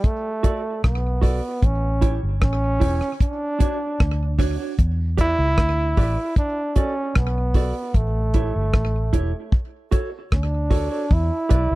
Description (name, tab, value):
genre	roots reggae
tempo	76 BPM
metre	4/4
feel	straight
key	E dorian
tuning	A4 = 440 Hz
part	clear trombone	melody	0.0-11.8 s	A3 to E4	-25 LUFS	right 1 dB	tape echo
part	damped 70s drum kit	drums	0.0-11.7 s	hi-hat, kick drum, rim click	-19 LUFS	equal	none
part	mellow electric guitar	accompaniment	0.4-11.7 s	D4 to D5	-29 LUFS	right 5 dB	tape echo
part	vintage muted fingered electric bass	bass	0.8-11.8 s	E1 to E2	-22 LUFS	equal	none
room	little or no reverb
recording	dry, close 1970s-style studio recording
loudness	-19 LUFS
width	side -18 dB against mid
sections	0.0-11.1 A section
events	none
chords	0.0 Bm7; 1.6 A7; 3.2 Dmaj7; 4.8 Em7; 6.4 Bm7; 7.9 A7; 9.5 Dmaj7; 11.1 Em7